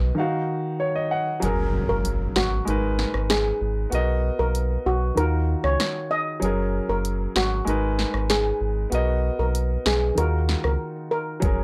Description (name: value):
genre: dancehall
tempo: 96 BPM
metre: 4/4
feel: straight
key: Eb minor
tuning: A4 = 441 Hz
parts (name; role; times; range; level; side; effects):
- warm baby grand piano; accompaniment; 0.0-11.6 s; Eb3 to Gb5; -29 LUFS; equal; none
- round analog bass; bass; 0.0-11.6 s; Gb1 to Eb2; -27 LUFS; equal; transformer saturation
- deep house drum kit; drums; 1.4-11.6 s; hi-hat, kick drum, rim click, snare drum; -29 LUFS; equal; none
- impact; sound effects; 1.4-3.9 s; none; -34 LUFS; equal; none
- steel pan; melody; 1.9-11.2 s; Gb4 to Eb5; -29 LUFS; equal; none
room: little or no reverb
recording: dry, gritty hardware recording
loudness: -24 LUFS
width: mono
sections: 0.0-1.4 A section; 1.4-11.6 B section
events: break 0.2-1.4, 10.8-11.4; grand piano fill 0.5-1.4; kick muted 1.4-11.4; impact 1.4-3.9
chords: 0.2 Ebmadd9; 1.4 Gbadd9; 2.7 Abmadd9; 3.9 Bmaj7; 5.2 Ebmadd9; 6.4 Gbadd9; 7.7 Abmadd9; 8.9 Bmaj7; 10.2 Ebmadd9